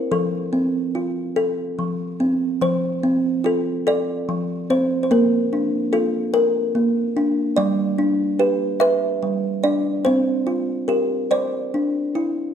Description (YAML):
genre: children's music, lullaby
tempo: 48 BPM (dotted quarters)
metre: 6/8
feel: rubato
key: F major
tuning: A4 = 440 Hz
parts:
  - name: kalimba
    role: solo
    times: 0.0-12.5 s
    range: F3 to E5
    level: -18 LUFS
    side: equal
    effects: none
room: moderate recital hall reverb, RT60 1.4 s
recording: lossy compression artefacts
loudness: -18 LUFS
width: side -8 dB against mid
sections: 0.0-2.6 A section; 2.6-12.5 A section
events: none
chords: 0.1 F; 5.1 Bb; 7.6 G; 10.0 Csus4; 11.3 Cadd9